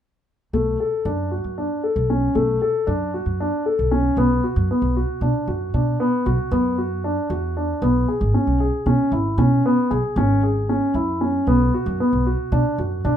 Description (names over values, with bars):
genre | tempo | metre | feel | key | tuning
contemporary instrumental, chamber music in an uneven meter | 230 BPM (eighths) | 7/8 | straight | B dorian | A4 = 441 Hz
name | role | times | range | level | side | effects
dark concert grand piano | arpeggios | 0.5-13.2 s | A3 to A4 | -20 LUFS | left 1 dB | none
upright bass | bass | 0.5-13.2 s | G#1 to B2 | -22 LUFS | right 1 dB | none
room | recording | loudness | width
moderate studio reverb, RT60 0.6 s | minimal, uncompressed stereo recording | -18 LUFS | side -9 dB against mid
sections
0.5-4.2 A section; 4.2-13.2 B section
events
none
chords
0.5 Bm7; 4.2 Bm; 7.8 C#m7; 11.5 Bm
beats
| 0.54 0.80 1.06 1.32 1.58 1.84 2.10 | 2.36 2.62 2.88 3.14 3.40 3.66 3.92 | 4.18 4.44 4.70 4.96 5.22 5.48 5.74 | 6.00 6.26 6.52 6.78 7.04 7.30 7.57 | 7.83 8.09 8.35 8.61 8.87 9.13 9.39 | 9.65 9.91 10.18 10.44 10.70 10.96 11.22 | 11.48 11.74 12.00 12.26 12.53 12.79 13.05